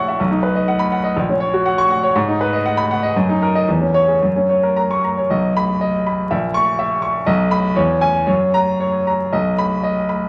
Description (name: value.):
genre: classical, virtuoso piano study.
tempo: 106-126 BPM.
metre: 2/4.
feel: rubato.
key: B major.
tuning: A4 = 441 Hz.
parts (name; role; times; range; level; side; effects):
clear grand piano; solo; 0.0-10.3 s; A#1 to C#6; -17 LUFS; equal; none.
room: wet large studio reverb, RT60 1.4 s.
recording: tube saturation, vinyl crackle.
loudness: -17 LUFS.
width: mono.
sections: 0.0-5.3 A section; 5.3-10.3 B section.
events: none.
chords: 0.2 B; 1.2 F#/A#; 2.1 G#m7; 3.1 D#m/F#; 3.7 C#m/E; 4.2 F#; 5.3 B; 6.3 A#dim; 7.3 B; 7.8 C#m/E; 8.3 F#; 9.3 B.